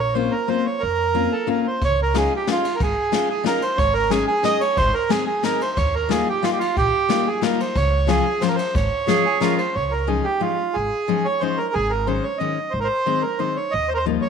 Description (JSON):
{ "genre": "musette waltz", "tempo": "181 BPM", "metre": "3/4", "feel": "straight", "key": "Db lydian", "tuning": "A4 = 440 Hz", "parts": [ { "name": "bandoneon", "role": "melody", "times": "0.0-14.3 s", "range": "F4 to Eb5", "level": "-21 LUFS", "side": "right 4 dB", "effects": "none" }, { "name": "upright bass", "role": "bass", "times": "0.0-14.2 s", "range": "Ab1 to F2", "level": "-25 LUFS", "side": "right 1 dB", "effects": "none" }, { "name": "fingerpicked steel-string acoustic guitar", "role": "accompaniment", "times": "0.1-14.2 s", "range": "Eb3 to Ab4", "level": "-24 LUFS", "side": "left 10 dB", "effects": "none" }, { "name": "jazz brush drum kit", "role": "drums", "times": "1.8-9.7 s", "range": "kick drum, ride cymbal, snare drum", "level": "-27 LUFS", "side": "left 3 dB", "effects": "none" }, { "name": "clear clarinet", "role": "second line", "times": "9.1-9.7 s", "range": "F4 to Ab4", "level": "-22 LUFS", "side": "right 8 dB", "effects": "none" } ], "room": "moderate echo chamber reverb, RT60 1.4 s, small room ambience", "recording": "1960s-style stereo with parts hard left and right", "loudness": "-18 LUFS", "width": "side -6 dB against mid", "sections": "0.0-1.8 A section; 1.8-9.8 B section; 9.8-14.3 B section", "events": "none", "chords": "0.0 Bbmadd9; 1.8 Dbadd9; 3.8 Absus4; 4.8 Ab; 5.8 Ebadd9; 7.8 Db; 9.8 Dbadd9; 11.8 Absus4; 12.7 Ab; 13.7 Ebadd9" }